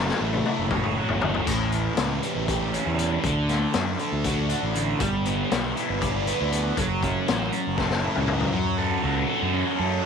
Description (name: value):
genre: psychedelic rock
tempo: 238 BPM (eighths)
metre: 7/8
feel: straight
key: unclear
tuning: A4 = 440 Hz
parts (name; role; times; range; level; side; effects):
- thick fuzz guitar; riff; 0.0-10.1 s; A2 to D5; -25 LUFS; right 1 dB; distortion, phaser
- fuzz fingered electric bass; bass; 0.0-10.0 s; F#1 to F#2; -28 LUFS; right 1 dB; overdrive
- raw garage drum kit; drums; 0.1-8.5 s; hi-hat, kick drum, snare drum, splash cymbal, toms; -28 LUFS; left 5 dB; none
room: light reverb, small room ambience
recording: 1960s-style stereo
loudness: -22 LUFS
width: side -6 dB against mid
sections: 0.0-8.5 A section; 8.5-10.1 B section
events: drum fill 0.0-1.5, 7.8-8.5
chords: 0.0 F#m7; 1.5 A7; 3.2 D; 5.0 G6; 6.8 F#m7; 8.5 F#m